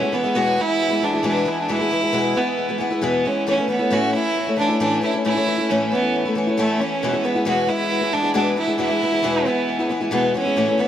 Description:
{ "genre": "rock", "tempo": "135 BPM", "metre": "4/4", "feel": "straight", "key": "unclear", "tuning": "A4 = 440 Hz", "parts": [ { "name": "clear fiddle", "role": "melody", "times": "0.0-10.9 s", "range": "A3 to F#4", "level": "-21 LUFS", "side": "right 2 dB", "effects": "tape echo" }, { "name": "picked twelve-string acoustic guitar", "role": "accompaniment", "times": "0.0-10.9 s", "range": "E2 to E4", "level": "-21 LUFS", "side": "left 2 dB", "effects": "tape echo" } ], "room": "moderate plate reverb, RT60 2.6 s", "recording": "echo-heavy mix", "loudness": "-18 LUFS", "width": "side -10 dB against mid", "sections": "0.0-10.9 A section", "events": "none", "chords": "0.0 E; 3.5 A; 7.0 E", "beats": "0.36 0.80 1.25 | 1.69 2.14 2.58 3.03 | 3.47 3.92 4.36 4.81 | 5.25 5.69 6.14 6.58 | 7.03 7.47 7.91 8.36 | 8.80 9.24 9.69 10.13 | 10.58" }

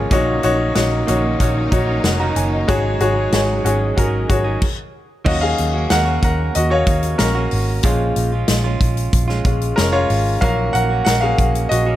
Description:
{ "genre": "piano-driven pop", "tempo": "93 BPM", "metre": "4/4", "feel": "straight", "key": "Eb minor", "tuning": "A4 = 440 Hz", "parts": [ { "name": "clear baby grand piano", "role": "accompaniment", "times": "0.0-12.0 s", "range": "Ab2 to Bb5", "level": "-19 LUFS", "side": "left 2 dB", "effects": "none" }, { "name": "rich studio string section", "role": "sustained chords", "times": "0.0-4.6 s", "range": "Db3 to Eb4", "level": "-29 LUFS", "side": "equal", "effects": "none" }, { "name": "direct-recorded clean electric guitar", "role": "riff", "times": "0.0-12.0 s", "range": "Ab2 to Ab4", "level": "-25 LUFS", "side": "right 6 dB", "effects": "none" }, { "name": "vintage muted picked electric bass", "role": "bass", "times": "0.0-12.0 s", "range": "F1 to Eb2", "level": "-20 LUFS", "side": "equal", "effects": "none" }, { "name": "modern studio drum kit", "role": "drums", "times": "0.1-11.9 s", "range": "crash cymbal, hi-hat, kick drum, snare drum", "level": "-20 LUFS", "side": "equal", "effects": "none" } ], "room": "light reverb, small room ambience", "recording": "none", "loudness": "-15 LUFS", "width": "side -13 dB against mid", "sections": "0.0-5.3 A section; 5.3-12.0 B section", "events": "stop 4.6-5.3; grand piano solo 5.3-12.0", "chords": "0.1 Ebm7/Bb; 2.7 Ab7sus4; 5.3 Ebm7; 7.8 Bbm7; 10.4 Ebm7/Bb", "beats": "| 0.11 0.75 1.40 2.04 | 2.68 3.33 3.97 4.62 | 5.26 5.91 6.55 7.20 | 7.84 8.48 9.13 9.77 | 10.42 11.06 11.71" }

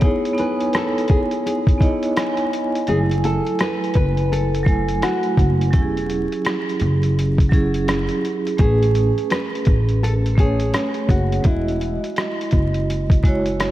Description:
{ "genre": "lo-fi hip hop", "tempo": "84 BPM", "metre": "4/4", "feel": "swing 62% on 16ths", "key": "E major", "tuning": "A4 = 439 Hz", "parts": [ { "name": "nylon-string guitar", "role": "melody", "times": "0.0-13.6 s", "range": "E4 to B4", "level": "-25 LUFS", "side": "left 1 dB", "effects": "low-pass filter" }, { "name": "vibraphone with medium hard mallets", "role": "accompaniment", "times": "0.0-13.7 s", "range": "F#3 to G#5", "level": "-22 LUFS", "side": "right 2 dB", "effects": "cassette tape, low-pass filter" }, { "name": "lo-fi sampler-style drum kit", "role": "drums", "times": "0.0-13.7 s", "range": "hi-hat, kick drum, rim click", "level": "-20 LUFS", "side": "equal", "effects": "none" }, { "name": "upright bass", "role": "bass", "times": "2.9-13.7 s", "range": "E1 to A1", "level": "-20 LUFS", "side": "equal", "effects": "none" } ], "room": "moderate lush hall reverb, RT60 2.7 s", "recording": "dreamy mix soaked in reverb, vinyl crackle", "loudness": "-17 LUFS", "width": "side -14 dB against mid", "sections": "0.0-13.7 A section", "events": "break 0.0-2.9; kick muted 2.9-3.6", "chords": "0.0 C#m9; 2.9 F#m9; 5.7 E69; 8.6 Amaj9; 11.4 Emaj9", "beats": "| 0.02 0.74 1.45 2.17 | 2.88 3.59 4.31 5.02 | 5.74 6.45 7.17 7.88 | 8.59 9.31 10.02 10.74 | 11.45 12.16 12.88 13.59" }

